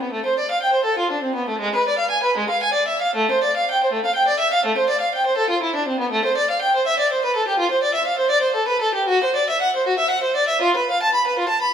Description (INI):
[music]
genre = classical, baroque-style suite movement for unaccompanied violin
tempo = 80 BPM (dotted quarters)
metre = 12/8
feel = rubato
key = A minor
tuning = A4 = 440 Hz
[part]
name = rich violin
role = solo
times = 0.0-11.7 s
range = G#3 to B5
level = -17 LUFS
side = equal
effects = none
[sound]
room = moderate recital hall reverb, RT60 1.6 s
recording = minimal, uncompressed stereo recording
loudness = -17 LUFS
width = side -8 dB against mid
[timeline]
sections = 0.0-11.7 A section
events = none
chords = none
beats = | 0.12 0.86 1.61 2.34 | 3.14 3.90 4.63 5.37 | 6.12 6.86 7.58 8.31 | 9.10 9.86 10.63 11.38